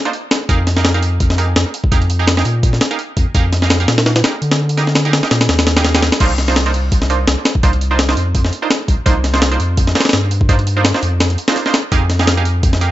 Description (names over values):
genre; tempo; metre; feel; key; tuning
drum and bass, jungle; 168 BPM; 4/4; swing 55% on 16ths; C minor; A4 = 441 Hz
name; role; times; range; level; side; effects
band-passed chord stab; stabs; 0.1-12.9 s; Bb3 to F5; -21 LUFS; right 4 dB; chorus, cassette tape, dub echo
breakbeat sampler-style drum kit; drums; 0.1-12.9 s; crash cymbal, hi-hat, kick drum, snare drum; -15 LUFS; equal; none
saturated sub bass; bass; 0.5-12.9 s; C2 to D3; -16 LUFS; equal; none
room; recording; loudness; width
little or no reverb; nothing above 7.8 kHz; -12 LUFS; side -14 dB against mid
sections
0.0-6.2 A section; 6.2-12.9 A section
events
drop 0.0-6.2, 6.2-12.9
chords
0.5 Fm11; 6.2 Cm11; 11.9 Fm11